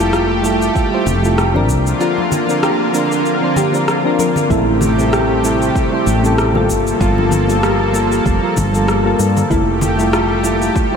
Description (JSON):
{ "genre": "sunset chillout", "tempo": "96 BPM", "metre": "4/4", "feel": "swing 56% on 16ths", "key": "G dorian", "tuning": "A4 = 440 Hz", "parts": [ { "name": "soft electric-piano-like synth keys", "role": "accompaniment", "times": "0.0-11.0 s", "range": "F3 to C5", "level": "-18 LUFS", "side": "moving between left 4 dB and right 3 dB", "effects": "chorus, auto-pan, analog delay" }, { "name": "lush unison pad", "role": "sustained chords", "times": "0.0-11.0 s", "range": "C3 to A4", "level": "-18 LUFS", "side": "left 1 dB", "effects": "chorus" }, { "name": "woody fretless electric bass", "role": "bass", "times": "0.0-10.7 s", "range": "F1 to G2", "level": "-18 LUFS", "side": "equal", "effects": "none" }, { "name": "soft round pluck", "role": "arpeggios", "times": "0.1-10.4 s", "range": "E4 to Bb4", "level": "-23 LUFS", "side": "equal", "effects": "wide subtle chorus, analog delay" }, { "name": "electronic rim click and shaker", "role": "drums", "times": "0.1-10.9 s", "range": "none", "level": "-24 LUFS", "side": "left 1 dB", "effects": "overdrive" }, { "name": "electronic kick drum", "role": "drums", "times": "0.8-10.9 s", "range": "none", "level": "-20 LUFS", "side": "equal", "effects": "overdrive" }, { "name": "congas", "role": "percussion", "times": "1.1-10.0 s", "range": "none", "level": "-27 LUFS", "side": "left 3 dB", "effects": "none" } ], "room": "wet huge ambient reverb, RT60 8.5 s", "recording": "dreamy mix soaked in reverb", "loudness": "-12 LUFS", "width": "side -6 dB against mid", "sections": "0.0-11.0 A section", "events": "none", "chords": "0.0 Fmaj9; 1.7 C9sus4; 4.5 Am7; 6.7 Gm9; 9.5 Fmaj9" }